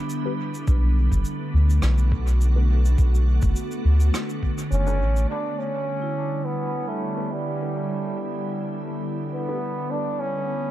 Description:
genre	ambient dub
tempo	104 BPM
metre	4/4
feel	straight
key	unclear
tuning	A4 = 440 Hz
part	soft additive organ-like pad	sustained chords	0.0-10.7 s	D3 to A4	-29 LUFS	equal	ensemble chorus, built-in reverb
part	vibraphone with soft mallets	arpeggios	0.0-1.0, 6.0-9.9 s	D4 to B5	-37 LUFS	right 4 dB	low-pass filter, dub echo
part	cabasa and rim click	drums	0.1-5.3 s	none	-35 LUFS	right 1 dB	low-pass filter on snare, low-pass filter on perc, low-pass filter on room, dub echo
part	filtered dub chord stab	stabs	0.3-9.6 s	D4 to B4	-38 LUFS	left 2 dB	phaser, analog chorus, dub echo
part	soft dub sub bass	bass	0.7-5.3 s	F#1 to D2	-18 LUFS	equal	none
part	electronic kick drum	drums	0.7-4.5 s	none	-24 LUFS	equal	none
part	clear trombone	melody	4.7-10.7 s	G3 to D4	-28 LUFS	right 1 dB	dub echo
room	light reverb, small room ambience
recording	dark, warm production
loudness	-21 LUFS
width	side -13 dB against mid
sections	0.0-5.3 A section; 5.3-10.7 B section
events	filter sweep on ambient pad 5.3-10.7; filter sweep on vibraphone 5.3-10.7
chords	0.0 A9sus4; 0.7 Bm7; 5.3 A9sus4; 9.9 Bm7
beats	0.10 | 0.68 1.25 1.83 2.41 | 2.98 3.56 4.14 4.71 | 5.29 5.87 6.45 7.02 | 7.60 8.18 8.75 9.33 | 9.91 10.48

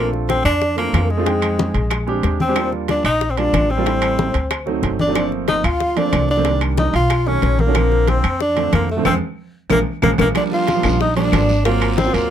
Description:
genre	Afro-Cuban jazz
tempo	185 BPM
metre	4/4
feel	straight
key	Bb major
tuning	A4 = 441 Hz
part	breathy tenor saxophone	melody	0.0-12.3 s	Ab3 to F4	-20 LUFS	equal	none
part	breathy mellow jazz flute	second line	0.0-12.3 s	Ab4 to F5	-26 LUFS	left 4 dB	none
part	warm concert grand piano	accompaniment	0.0-12.3 s	D3 to G5	-22 LUFS	right 5 dB	none
part	upright bass	bass	0.0-12.3 s	G1 to F2	-21 LUFS	equal	none
part	bongos	percussion	0.1-12.1 s	none	-27 LUFS	left 12 dB	none
part	congas	percussion	0.1-12.3 s	none	-25 LUFS	left 2 dB	none
part	timbales	percussion	0.3-12.3 s	none	-27 LUFS	right 4 dB	none
part	claves	percussion	0.5-12.0 s	none	-31 LUFS	left 7 dB	none
part	guiro	percussion	10.4-12.3 s	none	-34 LUFS	right 1 dB	none
room	little or no reverb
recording	close, detailed microphones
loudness	-15 LUFS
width	side -10 dB against mid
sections	0.0-10.4 A section; 10.4-12.3 B section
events	drum fill 9.1-10.4; band accent 9.1-10.4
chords	0.0 Bbmaj7; 1.3 Fm7; 1.9 Bb13; 2.6 Ebmaj7; 3.9 Am7; 4.5 D7b9; 5.2 Gm11; 6.5 Cm9; 7.1 B9; 7.8 Bbmaj7; 9.1 Fm; 9.7 Bb5; 10.4 Ebmaj9; 11.7 Ab13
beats	0.29 0.62 0.94 | 1.26 1.59 1.91 2.24 | 2.56 2.89 3.21 3.54 | 3.86 4.18 4.51 4.83 | 5.16 5.48 5.81 6.13 | 6.46 6.78 7.11 7.43 | 7.75 8.08 8.40 8.73 | 9.05 9.38 9.71 10.03 | 10.35 10.68 11.00 11.33 | 11.65 11.98 12.30

